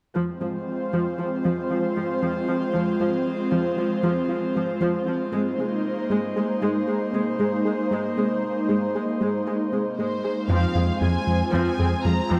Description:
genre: cinematic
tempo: 116 BPM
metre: 5/4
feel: straight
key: F minor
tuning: A4 = 438 Hz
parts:
  - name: warm symphonic viola section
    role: accompaniment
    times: 0.1-12.4 s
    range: F3 to Ab4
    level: -31 LUFS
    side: equal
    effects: none
  - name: airy breathy pad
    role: sustained chords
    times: 0.3-12.4 s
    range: Ab3 to C5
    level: -27 LUFS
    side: equal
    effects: chorus
  - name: soft round pluck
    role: arpeggios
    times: 0.2-12.4 s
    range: F3 to Ab4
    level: -32 LUFS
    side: equal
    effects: chorus, delay
  - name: warm symphonic violin section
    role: melody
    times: 10.0-12.4 s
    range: C5 to Bb5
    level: -32 LUFS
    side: equal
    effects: none
  - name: smooth gliding synth bass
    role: riff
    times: 10.5-12.4 s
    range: F2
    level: -26 LUFS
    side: equal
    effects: none
  - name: rich symphonic cello section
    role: bass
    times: 10.5-12.4 s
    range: F2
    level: -28 LUFS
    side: equal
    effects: none
room: moderate concert hall reverb, RT60 2.2 s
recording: none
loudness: -24 LUFS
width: mono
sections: 0.2-10.5 A section; 10.5-12.4 B section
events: none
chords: 0.2 Fm; 5.3 Abadd9; 10.5 Fm

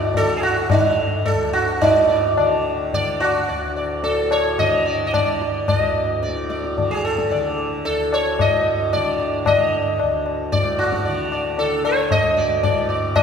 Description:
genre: indian classical, Hindustani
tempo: 111 BPM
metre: 7/4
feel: straight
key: D major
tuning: A4 = 440 Hz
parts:
  - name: sitar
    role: melody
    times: 0.0-13.2 s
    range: Eb4 to Eb5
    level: -20 LUFS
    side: right 2 dB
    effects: none
  - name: tanpura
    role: drone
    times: 0.0-13.2 s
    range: D2 to D3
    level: -27 LUFS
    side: left 1 dB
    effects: none
  - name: tabla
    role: percussion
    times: 0.1-13.2 s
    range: none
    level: -22 LUFS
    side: left 4 dB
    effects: none
room: wet concert hall reverb, RT60 2.2 s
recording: recorded in a church or concert hall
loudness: -17 LUFS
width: side -7 dB against mid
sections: 0.0-1.8 A section; 1.8-13.2 B section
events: speeding up 0.0-13.2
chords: none

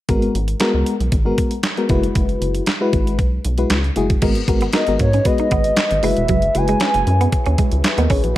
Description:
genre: early-eighties boogie funk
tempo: 116 BPM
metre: 4/4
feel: straight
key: unclear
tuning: A4 = 440 Hz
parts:
  - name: FM electric piano with tremolo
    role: accompaniment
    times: 0.1-8.4 s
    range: G#3 to E5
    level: -21 LUFS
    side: left 2 dB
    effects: none
  - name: rubbery square bass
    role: bass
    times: 0.1-8.3 s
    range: E1 to G#2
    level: -20 LUFS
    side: equal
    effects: none
  - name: detuned 8-bit digital drum machine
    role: drums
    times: 0.1-8.4 s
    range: crash cymbal, handclaps, hi-hat, kick drum, snare drum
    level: -20 LUFS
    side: equal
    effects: gated reverb
  - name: mellow French horn section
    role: sustained chords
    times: 4.2-8.4 s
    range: F#3 to B4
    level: -30 LUFS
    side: left 1 dB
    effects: stereo widening
  - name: semi-hollow electric guitar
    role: riff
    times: 4.2-8.2 s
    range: F#3 to D#4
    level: -24 LUFS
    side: right 5 dB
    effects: analog chorus
  - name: hollow clarinet-like synth lead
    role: melody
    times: 4.7-7.6 s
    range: C#5 to G#5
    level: -20 LUFS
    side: equal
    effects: chorus, tape echo
room: light reverb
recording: none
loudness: -15 LUFS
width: side -15 dB against mid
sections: 0.1-4.2 A section; 4.2-8.4 B section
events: none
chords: 0.1 G#m9; 1.9 F#9sus4; 4.2 G#m9; 6.0 F#9sus4

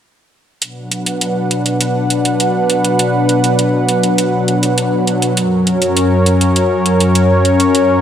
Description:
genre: synthwave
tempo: 101 BPM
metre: 4/4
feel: straight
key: B harmonic minor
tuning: A4 = 439 Hz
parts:
  - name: warm analog pad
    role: sustained chords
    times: 0.6-8.0 s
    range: F#2 to F#5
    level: -12 LUFS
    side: equal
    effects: chorus
  - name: electronic hi-hat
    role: drums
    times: 0.6-7.9 s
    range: none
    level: -19 LUFS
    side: right 1 dB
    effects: none
room: wet lush hall reverb, RT60 1.8 s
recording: bright 1980s-style digital production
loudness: -11 LUFS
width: side -9 dB against mid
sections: 0.6-8.0 A section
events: none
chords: 0.6 Bm; 5.4 F#

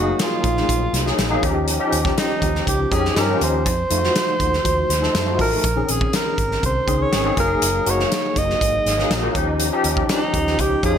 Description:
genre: polished 1980s jazz-funk pop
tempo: 121 BPM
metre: 4/4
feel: straight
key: unclear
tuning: A4 = 435 Hz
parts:
  - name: breathy alto saxophone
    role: melody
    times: 0.0-11.0 s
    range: Eb4 to Eb5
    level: -22 LUFS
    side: right 1 dB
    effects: none
  - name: barky tine electric piano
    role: accompaniment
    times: 0.0-11.0 s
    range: Eb3 to A4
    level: -22 LUFS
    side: left 2 dB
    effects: overdrive, fast tremolo, ensemble chorus
  - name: vintage muted fingered electric bass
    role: bass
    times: 0.0-11.0 s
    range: Gb1 to G2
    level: -24 LUFS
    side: right 1 dB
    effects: none
  - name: modern studio drum kit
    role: drums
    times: 0.2-11.0 s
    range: hi-hat, kick drum, snare drum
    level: -22 LUFS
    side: equal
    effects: gated reverb
room: light reverb, studio reverb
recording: none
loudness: -17 LUFS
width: side -8 dB against mid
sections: 0.0-11.0 A section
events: none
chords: 0.0 Gb69; 1.4 Eb9; 3.7 F7b9; 5.6 Bbm11; 7.4 Gb69; 9.4 Eb9

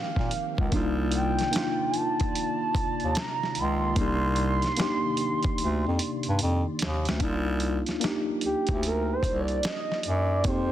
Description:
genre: R&B, neo-soul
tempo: 74 BPM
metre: 4/4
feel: swing 64% on 16ths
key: C dorian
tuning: A4 = 440 Hz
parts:
  - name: gliding portamento lead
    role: melody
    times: 0.0-10.7 s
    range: G4 to C6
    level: -30 LUFS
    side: right 2 dB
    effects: chorus
  - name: mellow tine electric piano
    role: accompaniment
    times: 0.0-10.7 s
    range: Bb3 to Bb4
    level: -31 LUFS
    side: left 1 dB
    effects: medium stereo tremolo
  - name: hollow soft pad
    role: sustained chords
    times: 0.0-7.2 s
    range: C3 to D5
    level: -36 LUFS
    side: equal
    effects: ensemble chorus
  - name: clear bass clarinet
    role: bass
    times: 0.0-10.7 s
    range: C2 to Bb2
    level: -27 LUFS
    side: equal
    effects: none
  - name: dusty soul sampler-style drum kit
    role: drums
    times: 0.2-10.7 s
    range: hi-hat, kick drum, snare drum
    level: -30 LUFS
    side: equal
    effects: none
room: light reverb, digital ambience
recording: dense, heavily limited modern master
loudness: -24 LUFS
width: side -12 dB against mid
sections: 0.0-7.2 A section; 7.2-10.7 B section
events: drum fill 5.6-7.2; soft synth lead solo 7.2-10.7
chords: 0.0 F9sus4; 0.7 Cm11; 4.0 Cm9; 7.2 Cm11

